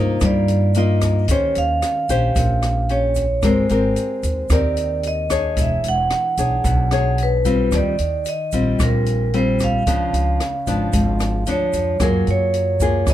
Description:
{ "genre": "bossa nova", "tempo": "112 BPM", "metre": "4/4", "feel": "straight", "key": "Eb major", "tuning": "A4 = 441 Hz", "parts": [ { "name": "vibraphone with medium hard mallets", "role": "melody", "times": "0.0-13.1 s", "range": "Bb4 to F#5", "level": "-22 LUFS", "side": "right 3 dB", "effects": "none" }, { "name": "nylon-string guitar", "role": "accompaniment", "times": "0.0-13.1 s", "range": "Ab2 to Db5", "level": "-22 LUFS", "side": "left 5 dB", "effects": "none" }, { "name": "upright bass", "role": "bass", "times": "0.0-13.1 s", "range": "E1 to G2", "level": "-20 LUFS", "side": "equal", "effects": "none" }, { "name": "open jazz drum kit", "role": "drums", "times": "0.2-13.1 s", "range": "hi-hat, kick drum, rim click", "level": "-24 LUFS", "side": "equal", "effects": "none" }, { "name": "egg shaker", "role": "percussion", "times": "0.2-13.1 s", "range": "none", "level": "-37 LUFS", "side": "right 8 dB", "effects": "none" } ], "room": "little or no reverb", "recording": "close, detailed microphones", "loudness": "-16 LUFS", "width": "side -12 dB against mid", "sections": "0.0-12.0 A section; 12.0-13.1 B section", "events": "none", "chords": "0.0 Cm11; 1.3 Eb13; 3.4 Abmaj9; 5.6 E13; 7.7 Eb69; 9.9 Db7b9; 12.0 F#maj9", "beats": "0.22 0.76 | 1.29 1.83 2.36 2.90 | 3.44 3.97 4.51 5.04 | 5.58 6.11 6.65 7.18 | 7.72 8.26 8.79 9.33 | 9.86 10.40 10.93 11.47 | 12.01 12.54 13.08" }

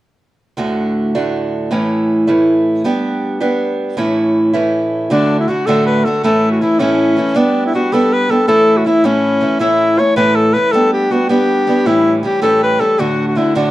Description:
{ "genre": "celtic folk", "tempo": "106 BPM (dotted quarters)", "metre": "6/8", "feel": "straight", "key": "D major", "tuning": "A4 = 440 Hz", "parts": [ { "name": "picked acoustic archtop guitar", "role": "accompaniment", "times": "0.6-13.7 s", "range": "D2 to G4", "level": "-14 LUFS", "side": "right 1 dB", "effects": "none" }, { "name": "clear alto saxophone", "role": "melody", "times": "5.1-13.7 s", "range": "C#4 to C#5", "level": "-13 LUFS", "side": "left 1 dB", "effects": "none" } ], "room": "wet studio reverb, RT60 0.8 s", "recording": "dark, warm production", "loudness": "-12 LUFS", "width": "side -16 dB against mid", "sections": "0.6-5.1 A section; 5.1-13.7 B section", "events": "none", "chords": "0.6 D; 1.7 A; 2.8 G; 4.0 A; 5.1 D; 6.2 A; 7.4 G; 8.5 A; 10.7 G; 11.9 A7; 13.0 D", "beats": "| 0.57 1.14 | 1.71 2.27 | 2.84 3.41 | 3.97 4.54 | 5.10 5.67 | 6.23 6.79 | 7.36 7.92 | 8.48 9.05 | 9.61 10.17 | 10.73 11.30 | 11.86 12.42 | 12.98 13.54" }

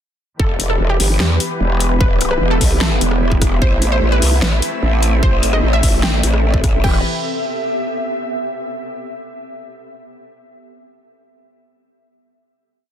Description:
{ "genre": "heavy wobble dubstep", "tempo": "149 BPM", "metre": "4/4", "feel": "half-time", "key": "E minor", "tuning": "A4 = 443 Hz", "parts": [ { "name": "wide unison pluck", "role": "melody", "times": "0.4-7.0 s", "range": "G4 to G5", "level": "-23 LUFS", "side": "equal", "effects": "ping-pong delay" }, { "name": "clear symphonic string section", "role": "sustained chords", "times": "0.4-7.0 s", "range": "E3 to B4", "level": "-25 LUFS", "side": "equal", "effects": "sidechain pumping, low-pass filter" }, { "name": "growl bass", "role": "bass", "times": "0.4-7.0 s", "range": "E1 to E2", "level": "-16 LUFS", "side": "equal", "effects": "chorus, overdrive" }, { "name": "dubstep drum kit", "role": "drums", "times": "0.4-6.9 s", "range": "crash cymbal, kick drum", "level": "-17 LUFS", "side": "equal", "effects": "none" }, { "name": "ethereal airy pad", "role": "texture", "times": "1.2-8.4 s", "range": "B3 to E5", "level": "-23 LUFS", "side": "equal", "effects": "ensemble chorus, built-in reverb, sidechain pumping" }, { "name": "dubstep drum kit", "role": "drums", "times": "0.6-6.7 s", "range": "hi-hat, rim click, snare drum", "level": "-21 LUFS", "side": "left 1 dB", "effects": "none" } ], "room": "light reverb", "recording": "dense, heavily limited modern master", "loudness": "-14 LUFS", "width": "side -10 dB against mid", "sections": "0.4-6.8 drop; 6.8-8.4 final chord", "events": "drop 0.4-6.8", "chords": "0.4 Em; 3.6 Am; 6.8 Em", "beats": "| 0.40 0.80 1.20 1.60 | 2.01 2.41 2.81 3.21 | 3.62 4.02 4.42 4.83 | 5.23 5.63 6.03 6.44 | 6.84 7.24 7.64 8.05" }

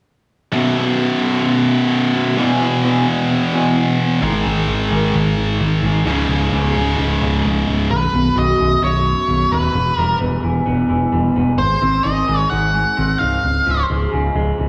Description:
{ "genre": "rock", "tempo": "130 BPM", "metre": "4/4", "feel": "straight", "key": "unclear", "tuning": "A4 = 444 Hz", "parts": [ { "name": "electric guitar through a small old amp", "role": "arpeggios", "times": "0.5-14.7 s", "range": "B1 to D#4", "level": "-24 LUFS", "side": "equal", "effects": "phaser, slapback echo" }, { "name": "tight distorted guitar", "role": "riff", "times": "0.5-7.9 s", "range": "B1 to G#3", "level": "-19 LUFS", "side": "equal", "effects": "distortion, slapback echo" }, { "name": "growling picked electric bass", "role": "bass", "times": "4.2-14.7 s", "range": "B0 to G#1", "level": "-21 LUFS", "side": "equal", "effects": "overdrive" }, { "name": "octave-fuzz lead guitar", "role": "melody", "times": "7.9-13.8 s", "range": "B4 to F#5", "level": "-21 LUFS", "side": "equal", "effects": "distortion, slapback echo" } ], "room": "wet recital hall reverb, RT60 1.8 s", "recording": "big arena sound, studio reverb", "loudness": "-17 LUFS", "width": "mono", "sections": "0.5-7.9 A section; 7.9-14.7 B section", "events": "none", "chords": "0.5 B5; 2.4 E5; 4.2 G#5; 6.1 C#5; 7.9 B; 9.7 Em; 11.6 G#; 13.4 C#", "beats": "| 0.53 0.99 1.45 1.91 | 2.37 2.83 3.29 3.75 | 4.21 4.68 5.14 5.60 | 6.06 6.52 6.98 7.44 | 7.90 8.36 8.82 9.28 | 9.74 10.21 10.67 11.13 | 11.59 12.05 12.51 12.97 | 13.43 13.89 14.35" }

